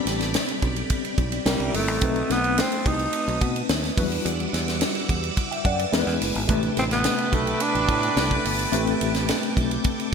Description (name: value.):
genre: polished 1980s jazz-funk pop.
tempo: 107 BPM.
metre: 4/4.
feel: straight.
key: A dorian.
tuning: A4 = 439 Hz.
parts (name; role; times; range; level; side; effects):
tine electric piano; accompaniment; 0.0-10.1 s; C3 to G5; -27 LUFS; left 3 dB; overdrive, fast stereo tremolo, analog chorus.
string machine, full ensemble; sustained chords; 0.0-10.1 s; G3 to E6; -31 LUFS; right 1 dB; phaser, ensemble chorus.
fingered electric bass; bass; 0.1-9.8 s; F#1 to B2; -28 LUFS; right 1 dB; none.
tight funk drum kit; drums; 0.1-10.1 s; hi-hat, kick drum, ride cymbal, snare drum; -26 LUFS; equal; gated reverb.
breathy alto saxophone; melody; 1.5-3.4, 6.8-8.5 s; G3 to D#4; -26 LUFS; right 2 dB; none.
warm horn section; second line; 6.5-10.1 s; G3 to B4; -30 LUFS; right 3 dB; none.
room: moderate lush hall reverb, RT60 1.8 s, small room reverb.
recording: bright 1980s-style digital production.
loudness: -21 LUFS.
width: side -6 dB against mid.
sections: 0.0-10.1 A section.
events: none.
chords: 0.0 Am11; 1.5 C9; 2.0 B7b9; 4.0 Em9; 5.9 E7; 6.5 Am11.